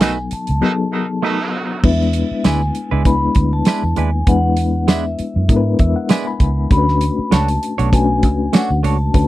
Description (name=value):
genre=lush 1970s-style soul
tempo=99 BPM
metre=4/4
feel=swing 54% on 16ths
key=unclear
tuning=A4 = 440 Hz
part: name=vibraphone with soft mallets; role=melody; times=0.0-9.3 s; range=E5 to B5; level=-23 LUFS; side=left 2 dB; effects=none
part: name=reed electric piano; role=accompaniment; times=0.0-9.3 s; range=F#3 to B5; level=-20 LUFS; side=left 4 dB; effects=fast tremolo
part: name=semi-hollow electric guitar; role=riff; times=0.0-9.0 s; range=G#3 to C#5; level=-21 LUFS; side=right 9 dB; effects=none
part: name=clear horn section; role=stabs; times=0.0-1.8 s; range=B2 to D#4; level=-22 LUFS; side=right 3 dB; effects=none
part: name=vintage muted fingered electric bass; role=bass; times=0.0-9.3 s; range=B1 to G#2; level=-18 LUFS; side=right 1 dB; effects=none
part: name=damped 70s drum kit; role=drums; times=0.0-9.3 s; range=crash cymbal, hi-hat, kick drum, snare drum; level=-15 LUFS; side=right 1 dB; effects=none
part: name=tambourine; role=percussion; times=0.0-8.7 s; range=none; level=-32 LUFS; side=left 7 dB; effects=none
room=light reverb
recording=dry, close 1970s-style studio recording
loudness=-14 LUFS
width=side -15 dB against mid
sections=0.0-1.8 A section; 1.8-9.3 A section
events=band accent 0.0-1.8; reed electric piano fill 5.5-6.7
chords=0.0 B7; 1.8 E7; 6.7 Bm9